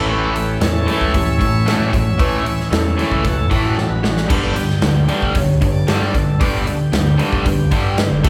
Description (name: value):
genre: classic rock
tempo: 114 BPM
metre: 4/4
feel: straight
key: unclear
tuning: A4 = 440 Hz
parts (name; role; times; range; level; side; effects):
- dark upright piano; accompaniment; 0.0-8.3 s; C#4 to C#5; -30 LUFS; equal; none
- bright tonewheel organ; sustained chords; 0.0-8.3 s; E3 to E5; -27 LUFS; equal; overdrive, slow rotary speaker
- overdriven electric guitar; riff; 0.0-8.3 s; G2 to A3; -22 LUFS; equal; none
- overdriven electric guitar; riff; 0.0-8.3 s; G2 to A3; -26 LUFS; equal; phaser
- growling fingered electric bass; bass; 0.0-8.3 s; G1 to A2; -24 LUFS; equal; overdrive
- big rock drum kit; drums; 0.4-8.3 s; crash cymbal, hi-hat, kick drum, snare drum; -22 LUFS; equal; none
room: moderate large studio reverb, RT60 1.2 s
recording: band playing live in one room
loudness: -17 LUFS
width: mono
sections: 0.0-8.3 A section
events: tonewheel organ solo 0.0-8.3; drum fill 3.8-4.3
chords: 0.0 A; 4.3 G